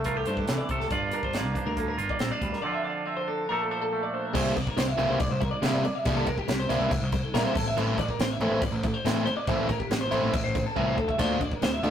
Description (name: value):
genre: math rock and midwest emo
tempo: 140 BPM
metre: 4/4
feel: straight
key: unclear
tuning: A4 = 444 Hz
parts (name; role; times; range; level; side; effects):
- twangy electric guitar; accompaniment; 0.0-4.3 s; G2 to A4; -30 LUFS; right 3 dB; none
- twelve-string electric guitar; arpeggios; 0.0-11.9 s; G4 to E5; -31 LUFS; left 1 dB; none
- fuzz fingered electric bass; bass; 0.0-11.9 s; G1 to C3; -31 LUFS; equal; overdrive
- crisp fusion drum kit; drums; 0.0-11.9 s; crash cymbal, hi-hat, kick drum, snare drum, splash cymbal; -31 LUFS; equal; none
- biting overdriven guitar; riff; 4.3-11.9 s; C3 to F4; -28 LUFS; equal; none
room: moderate stone room reverb, RT60 1.4 s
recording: rough rehearsal-room recording, tube saturation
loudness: -24 LUFS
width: side -9 dB against mid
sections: 0.0-4.3 A section; 4.3-11.9 B section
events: drum fill 10.8-11.2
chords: 0.0 C69; 0.9 Gm7; 2.6 Dm7; 3.5 Bbmaj7; 4.3 C9; 7.6 Am; 11.2 Dm9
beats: 0.05 0.48 | 0.91 1.34 1.77 2.20 | 2.63 3.06 3.49 3.92 | 4.35 4.77 5.20 5.63 | 6.06 6.49 6.91 7.34 | 7.77 8.20 8.62 9.05 | 9.48 9.91 10.34 10.77 | 11.20 11.62